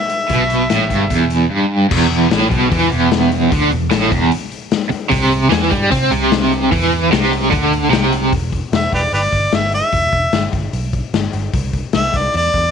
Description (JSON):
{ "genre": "blues rock power trio and southern rock", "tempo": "150 BPM", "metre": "4/4", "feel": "straight", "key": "E minor", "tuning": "A4 = 444 Hz", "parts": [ { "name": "warm harmonica", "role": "melody", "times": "0.0-1.5, 8.7-12.7 s", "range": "G4 to E5", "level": "-17 LUFS", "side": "equal", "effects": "overdrive" }, { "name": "raw garage drum kit", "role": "drums", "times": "0.1-12.6 s", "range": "crash cymbal, hi-hat, kick drum, snare drum", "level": "-20 LUFS", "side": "left 5 dB", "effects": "none" }, { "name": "cranked stack guitar", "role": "riff", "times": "0.3-8.3 s", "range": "E2 to C4", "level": "-14 LUFS", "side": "right 2 dB", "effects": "overdrive, tremolo" }, { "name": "vintage muted picked electric bass", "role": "bass", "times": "0.3-12.7 s", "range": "E1 to C3", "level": "-21 LUFS", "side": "right 1 dB", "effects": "none" } ], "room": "studio reverb", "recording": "1960s-style stereo", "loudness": "-13 LUFS", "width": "side -7 dB against mid", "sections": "0.0-1.9 A section; 1.9-8.3 B section; 8.3-12.7 C section", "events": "harmonica solo 8.3-12.7", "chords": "0.0 Em; 1.9 E5; 5.1 C5; 8.3 Em; 11.5 C" }